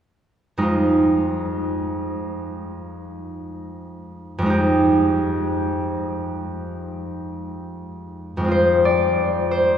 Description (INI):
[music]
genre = classical, solo harp piece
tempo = 54-65 BPM (dotted quarters)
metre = 6/8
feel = rubato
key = F dorian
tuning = A4 = 440 Hz
[part]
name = concert harp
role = solo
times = 0.6-9.8 s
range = F2 to D5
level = -20 LUFS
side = equal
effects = none
[sound]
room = wet cathedral reverb, RT60 7.0 s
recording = heard from further back in the room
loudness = -18 LUFS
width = side -9 dB against mid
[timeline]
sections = 0.7-8.5 A section; 8.5-9.8 B section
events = none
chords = 0.7 Fm7; 4.5 Fm9; 8.5 Fm6